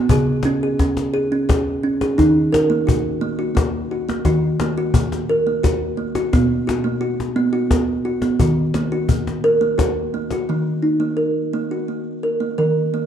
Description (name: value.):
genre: world meditative, meditative tuned percussion.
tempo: 58 BPM (dotted quarters).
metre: 6/8.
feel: straight.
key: Eb minor.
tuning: A4 = 439 Hz.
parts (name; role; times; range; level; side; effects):
kalimba; arpeggios; 0.0-13.1 s; B2 to Bb4; -18 LUFS; right 1 dB; none.
cajon; percussion; 0.1-10.5 s; none; -21 LUFS; left 2 dB; none.
room: wet recital hall reverb, RT60 1.5 s, small room reverb.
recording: dark, warm production.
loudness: -17 LUFS.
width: side -9 dB against mid.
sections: 0.0-10.5 A section; 10.5-13.1 B section.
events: none.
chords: 0.1 Db5; 2.2 Ebm; 6.3 B5; 8.4 Ebm; 10.5 Eb5.